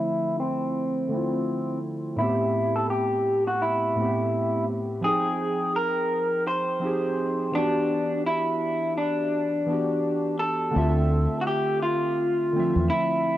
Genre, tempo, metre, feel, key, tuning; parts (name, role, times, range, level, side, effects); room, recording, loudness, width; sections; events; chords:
lo-fi hip hop; 84 BPM; 4/4; swing 59% on 16ths; D minor; A4 = 440 Hz
electric guitar through a small old amp; melody; 0.0-13.4 s; C4 to C5; -25 LUFS; equal; low-pass filter, cassette tape
warbly lo-fi synth keys; accompaniment; 0.0-13.4 s; A2 to G5; -27 LUFS; right 1 dB; chorus, low-pass filter
deep dub fingered electric bass; bass; 10.8-12.9 s; D2 to E2; -22 LUFS; equal; tube saturation
moderate spring reverb, RT60 2.7 s; home recording on cassette; -23 LUFS; side -13 dB against mid
0.0-10.7 A section; 10.7-13.4 B section
filter sweep 0.0-10.7
0.0 Dm9; 2.2 Am9; 5.0 Fm9; 7.5 Em9; 10.7 Dm9